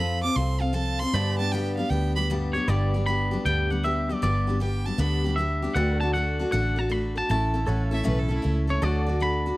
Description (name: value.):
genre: country.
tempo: 156 BPM.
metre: 4/4.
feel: swing 65% on 8ths.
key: unclear.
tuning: A4 = 439 Hz.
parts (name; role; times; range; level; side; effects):
clear fiddle; second line; 0.0-2.2, 4.6-5.3, 7.9-8.6 s; E4 to D6; -31 LUFS; right 3 dB; none.
picked steel-string acoustic guitar; accompaniment; 0.0-9.6 s; G2 to A4; -28 LUFS; left 2 dB; none.
pedal steel guitar; sustained chords; 0.0-9.6 s; A4 to A5; -36 LUFS; right 1 dB; none.
vintage muted fingered electric bass; bass; 0.0-9.5 s; G1 to G2; -26 LUFS; equal; none.
twangy electric guitar; melody; 2.5-9.6 s; Db5 to B5; -28 LUFS; equal; spring reverb.
room: little or no reverb.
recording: dry, close 1970s-style studio recording.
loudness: -22 LUFS.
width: side -19 dB against mid.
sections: 0.0-2.7 A section; 2.7-9.6 B section.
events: fiddle solo 0.0-2.7.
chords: 0.0 F; 1.1 G; 5.8 D; 7.3 A; 8.8 D.